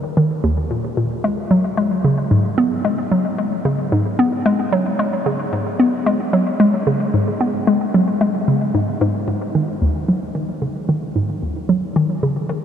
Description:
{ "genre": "ambient", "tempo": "112 BPM", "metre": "4/4", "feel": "straight", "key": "unclear", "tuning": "A4 = 440 Hz", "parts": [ { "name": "hollow square pluck", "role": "solo", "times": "0.0-12.6 s", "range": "Eb2 to Cb4", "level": "-16 LUFS", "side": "equal", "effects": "chorus, analog delay" } ], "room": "wet huge ambient reverb, RT60 7.7 s", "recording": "dreamy mix soaked in reverb", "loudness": "-16 LUFS", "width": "side -8 dB against mid", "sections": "0.0-12.6 A section", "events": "none", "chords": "none" }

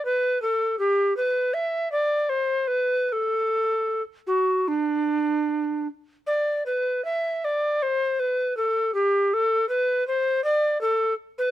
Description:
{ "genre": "classical, baroque-style fantasia for unaccompanied recorder", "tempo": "78 BPM", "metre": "4/4", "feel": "uneven beats, rubato", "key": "unclear", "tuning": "A4 = 445 Hz", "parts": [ { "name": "mellow tenor recorder", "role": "solo", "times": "0.0-11.5 s", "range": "D4 to E5", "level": "-22 LUFS", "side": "equal", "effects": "none" } ], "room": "little or no reverb", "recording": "close, detailed microphones", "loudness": "-22 LUFS", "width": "side -13 dB against mid", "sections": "0.0-6.3 A section; 6.3-11.5 B section", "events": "none", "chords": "none" }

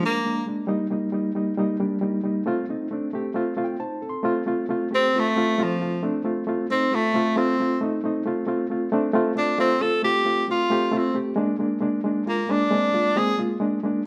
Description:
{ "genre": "soul", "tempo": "135 BPM", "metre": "4/4", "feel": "straight", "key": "F mixolydian", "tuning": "A4 = 440 Hz", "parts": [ { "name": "warm tenor saxophone", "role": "melody", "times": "0.0-0.4, 4.9-13.4 s", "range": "F3 to A4", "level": "-24 LUFS", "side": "equal", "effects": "none" }, { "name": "bright reed electric piano", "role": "accompaniment", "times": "0.0-14.0 s", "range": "G3 to C6", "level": "-26 LUFS", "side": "equal", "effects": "fast tremolo" } ], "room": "moderate large studio reverb, RT60 1.2 s", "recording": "band playing live in one room", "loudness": "-24 LUFS", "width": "mono", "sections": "0.0-4.3 A section; 4.3-14.1 B section", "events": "reed electric piano fill 3.4-4.3; tenor saxophone solo 4.3-14.1", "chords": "0.0 Bb7; 0.7 Eb; 2.5 F; 11.4 Bb7" }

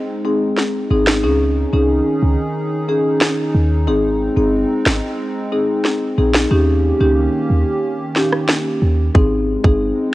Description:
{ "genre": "dancehall", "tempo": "91 BPM", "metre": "4/4", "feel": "straight", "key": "Ab major", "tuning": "A4 = 440 Hz", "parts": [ { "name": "hollow soft pad", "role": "sustained chords", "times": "0.0-10.1 s", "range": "Eb3 to Ab4", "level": "-23 LUFS", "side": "right 1 dB", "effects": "chorus, sidechain pumping, cassette tape" }, { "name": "marimba with medium mallets", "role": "accompaniment", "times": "0.2-9.8 s", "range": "C4 to Ab4", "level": "-18 LUFS", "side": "left 1 dB", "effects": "cassette tape" }, { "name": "island pop drum kit", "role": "drums", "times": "0.6-9.8 s", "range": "kick drum, rim click, snare drum", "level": "-17 LUFS", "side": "equal", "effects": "cassette tape" }, { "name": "clean 808-style bass", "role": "bass", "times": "0.9-9.9 s", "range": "G1 to Eb2", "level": "-17 LUFS", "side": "equal", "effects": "none" } ], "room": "light reverb", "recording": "home recording on cassette", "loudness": "-14 LUFS", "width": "side -17 dB against mid", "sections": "0.0-10.1 A section", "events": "break 0.0-9.2", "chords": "0.0 Ab; 1.2 Dbsus2; 3.9 Ab; 6.5 Eb7; 9.2 Ab" }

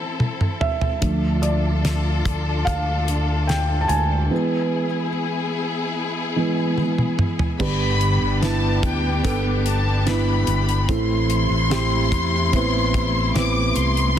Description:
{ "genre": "pop ballad", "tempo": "73 BPM", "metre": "4/4", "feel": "straight", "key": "A minor", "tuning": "A4 = 444 Hz", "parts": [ { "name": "felt-muted upright piano", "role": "accompaniment", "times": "0.0-14.2 s", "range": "G2 to A5", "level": "-23 LUFS", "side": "right 3 dB", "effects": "none" }, { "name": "warm studio string section", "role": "sustained chords", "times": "0.0-14.2 s", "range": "C3 to A4", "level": "-28 LUFS", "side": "left 4 dB", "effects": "none" }, { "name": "damped 70s drum kit", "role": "drums", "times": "0.2-14.2 s", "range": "crash cymbal, hi-hat, kick drum, snare drum, toms", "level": "-24 LUFS", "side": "equal", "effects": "soft clipping on kick" }, { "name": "fingered electric bass", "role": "bass", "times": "1.0-14.2 s", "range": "G1 to E2", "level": "-22 LUFS", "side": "equal", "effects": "none" }, { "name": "rich chamber violin section", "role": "second line", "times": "7.6-14.2 s", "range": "G5 to D6", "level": "-24 LUFS", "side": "left 3 dB", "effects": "none" } ], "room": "light reverb, small room ambience", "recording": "dense, heavily limited modern master", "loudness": "-18 LUFS", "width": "side -10 dB against mid", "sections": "0.0-7.6 A section; 7.6-14.2 B section", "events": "drum fill 0.0-1.0, 6.8-7.6; felt piano solo 0.0-7.6", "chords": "0.0 Am; 1.0 Dm; 4.3 E; 7.6 G; 10.9 Am" }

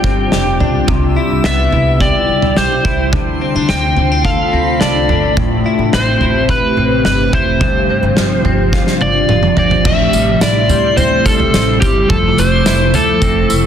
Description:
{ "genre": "dream pop", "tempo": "107 BPM", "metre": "4/4", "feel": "straight", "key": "A minor", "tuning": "A4 = 441 Hz", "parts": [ { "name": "overdriven slide guitar", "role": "melody", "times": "0.0-13.7 s", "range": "G4 to G5", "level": "-16 LUFS", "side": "equal", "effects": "tape echo" }, { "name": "ethereal airy pad", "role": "sustained chords", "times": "0.0-13.7 s", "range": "C3 to G4", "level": "-18 LUFS", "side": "right 1 dB", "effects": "ensemble chorus, built-in reverb" }, { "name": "direct-recorded clean electric guitar", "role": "arpeggios", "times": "0.0-13.7 s", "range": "G2 to B4", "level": "-18 LUFS", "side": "left 2 dB", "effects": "analog chorus, tape echo" }, { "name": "upright bass", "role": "bass", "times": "0.0-13.7 s", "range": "F1 to A2", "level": "-18 LUFS", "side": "equal", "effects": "none" }, { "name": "loose indie drum kit", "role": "drums", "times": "0.0-13.6 s", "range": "crash cymbal, kick drum, snare drum, tambourine, toms", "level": "-17 LUFS", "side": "right 1 dB", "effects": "none" }, { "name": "drifting glass-harmonics texture", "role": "texture", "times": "1.1-5.2, 10.6-13.1 s", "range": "B5 to E6", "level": "-26 LUFS", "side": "left 2 dB", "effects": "chorus, built-in reverb, tape echo" } ], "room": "moderate lush hall reverb, RT60 1.9 s, studio ambience", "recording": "dense, heavily limited modern master", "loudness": "-10 LUFS", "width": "side -9 dB against mid", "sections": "0.0-9.9 A section; 9.9-13.7 B section", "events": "drum fill 8.7-9.9", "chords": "0.0 G7sus4; 0.9 Cmaj7; 3.1 Dm7; 5.4 Am9; 7.6 G7sus4; 9.9 Am7; 12.1 Fmaj7" }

